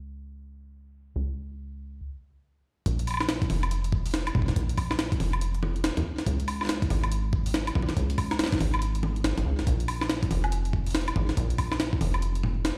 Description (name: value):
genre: IDM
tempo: 141 BPM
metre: 4/4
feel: swing 62% on 16ths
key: unclear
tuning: A4 = 440 Hz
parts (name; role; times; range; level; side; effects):
- deep acid bass; bass; 0.0-12.7 s; F1 to Eb2; -31 LUFS; equal; tube saturation
- electronic kick drum; drums; 2.9-12.0 s; none; -30 LUFS; equal; none
- jungle sampler-style drum kit; drums; 2.9-12.8 s; hi-hat, snare drum, toms, woodblock; -32 LUFS; equal; low-pass filter on snare, low-pass filter on hats, low-pass filter on perc, low-pass filter on toms, low-pass filter on room, digital delay
room: light reverb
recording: played on a big sound system in a bare room, large studio reverb, low-pass filter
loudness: -28 LUFS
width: mono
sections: 0.0-2.9 A section; 2.9-12.8 B section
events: filter sweep 0.0-2.9; stop 2.0-2.9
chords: none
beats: 0.31 0.73 | 1.16 1.58 2.01 2.44 | 2.86 3.29 3.71 4.14 | 4.56 4.99 5.41 5.84 | 6.26 6.69 7.12 7.54 | 7.97 8.39 8.82 9.24 | 9.67 10.10 10.52 10.95 | 11.37 11.80 12.22 12.65